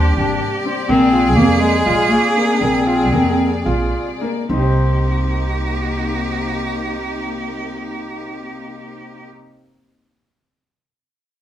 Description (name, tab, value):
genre	contemporary instrumental, contemporary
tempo	209-250 BPM (eighths)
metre	7/8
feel	straight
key	C minor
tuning	A4 = 440 Hz
part	breathy clarinet	melody	0.0-3.9 s	Ab3 to D4	-17 LUFS	left 1 dB	none
part	bright cello	second line	0.0-9.3 s	G4 to Ab4	-22 LUFS	right 2 dB	none
part	dark studio string section	sustained chords	0.0-9.3 s	C3 to D5	-26 LUFS	left 3 dB	none
part	warm concert grand piano	arpeggios	0.0-9.5 s	Bb3 to C5	-24 LUFS	left 2 dB	none
part	upright bass	bass	0.0-9.3 s	Ab1 to F2	-19 LUFS	right 2 dB	none
room	wet studio reverb, RT60 0.6 s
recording	heard from further back in the room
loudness	-15 LUFS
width	side -11 dB against mid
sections	0.0-4.5 A section; 4.5-8.5 B section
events	slowing down 0.9-4.5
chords	0.0 Abmaj9#11; 0.9 Bb9; 4.5 Cm7